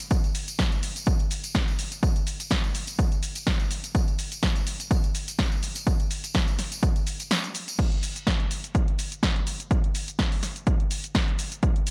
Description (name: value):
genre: house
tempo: 125 BPM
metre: 4/4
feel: swing 55% on 16ths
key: none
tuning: none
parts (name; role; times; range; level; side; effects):
- punchy analog drum machine; drums; 0.0-11.9 s; cabasa, crash cymbal, hi-hat, snare drum; -32 LUFS; equal; none
- tambourine; percussion; 0.0-7.8 s; none; -41 LUFS; equal; none
- electronic kick drum; drums; 0.1-11.7 s; none; -27 LUFS; equal; overdrive
room: digital ambience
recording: none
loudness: -26 LUFS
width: mono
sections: 0.0-7.8 A section; 7.8-11.9 B section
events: kick drops out 7.3-7.8; drop 7.8-11.9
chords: none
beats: | 0.11 0.59 1.07 1.55 | 2.03 2.51 2.99 3.47 | 3.95 4.43 4.91 5.39 | 5.87 6.35 6.83 7.31 | 7.79 8.27 8.75 9.23 | 9.71 10.19 10.67 11.15 | 11.63